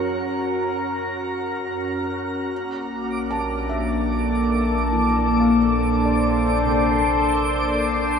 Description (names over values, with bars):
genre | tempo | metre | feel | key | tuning
ambient | free time | none | none | unclear | A4 = 440 Hz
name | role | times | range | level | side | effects
evolving wavetable pad | sustained chords | 0.0-8.2 s | Bb3 to D5 | -20 LUFS | left 1 dB | phaser, built-in reverb
felt-muted upright piano | arpeggios | 0.0-8.2 s | C3 to A5 | -34 LUFS | equal | tape echo
deep rumbling drone | bass | 0.0-8.2 s | Bb1 to F#2 | -28 LUFS | equal | built-in reverb
twinkling granular texture | texture | 3.0-8.2 s | D6 | -28 LUFS | right 2 dB | built-in reverb
room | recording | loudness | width
wet shimmer reverb, RT60 7.7 s | none | -19 LUFS | side -6 dB against mid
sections
0.0-8.2 A section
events
fade-out 7.1-8.2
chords
0.0 F#; 2.5 Bbmaj7